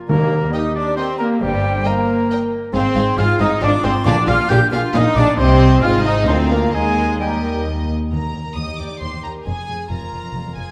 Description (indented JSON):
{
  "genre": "quick classical-period movement for symphony orchestra",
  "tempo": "135 BPM",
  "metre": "3/4",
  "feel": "straight",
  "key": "Eb major",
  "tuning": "A4 = 440 Hz",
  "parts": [
    { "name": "mellow clarinet", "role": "second line", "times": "0.0-7.9 s", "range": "D4 to C5", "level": "-30 LUFS", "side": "equal", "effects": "none" },
    { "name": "bright silver concert flute", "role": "second line", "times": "0.1-7.7 s", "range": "G5 to G6", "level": "-26 LUFS", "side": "equal", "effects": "none" },
    { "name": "clear oboe", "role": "second line", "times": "0.1-7.7 s", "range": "G4 to G5", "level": "-30 LUFS", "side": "equal", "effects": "none" },
    { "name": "warm studio viola section", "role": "accompaniment", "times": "0.1-10.7 s", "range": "G3 to Ab4", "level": "-28 LUFS", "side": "equal", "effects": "none" },
    { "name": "warm French horn section", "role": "sustained chords", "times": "0.1-7.7 s", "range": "G3 to G4", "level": "-23 LUFS", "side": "equal", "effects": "none" },
    { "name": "dark studio double bass section", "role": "bass", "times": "0.1-10.6 s", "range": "F1 to Eb2", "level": "-24 LUFS", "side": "equal", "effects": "none" },
    { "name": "warm studio cello section", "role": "bass", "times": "0.1-10.6 s", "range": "D2 to C3", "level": "-25 LUFS", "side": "equal", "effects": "none" },
    { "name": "timpani", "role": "percussion", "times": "0.1-0.7, 4.1-4.7, 8.1-8.8 s", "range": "Bb2 to Eb3", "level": "-26 LUFS", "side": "equal", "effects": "none" },
    { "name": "warm studio violin section", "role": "melody", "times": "0.5-10.7 s", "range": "Eb5 to Eb6", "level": "-33 LUFS", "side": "equal", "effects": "none" },
    { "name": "dark studio violin section", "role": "second line", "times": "0.5-10.7 s", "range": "G4 to F5", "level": "-32 LUFS", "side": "equal", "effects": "none" }
  ],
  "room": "wet scoring stage reverb, RT60 1.8 s",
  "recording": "dark, warm production",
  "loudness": "-17 LUFS",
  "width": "mono",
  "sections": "0.0-8.1 A section; 8.1-10.7 A section",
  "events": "none",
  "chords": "0.1 Eb; 1.4 Eb/G (rootless); 2.7 Fm/Ab; 4.1 Bb7; 5.4 Cm; 5.8 Fm7/Ab; 6.3 Bb7/D; 6.7 Eb; 9.5 Bb5/F"
}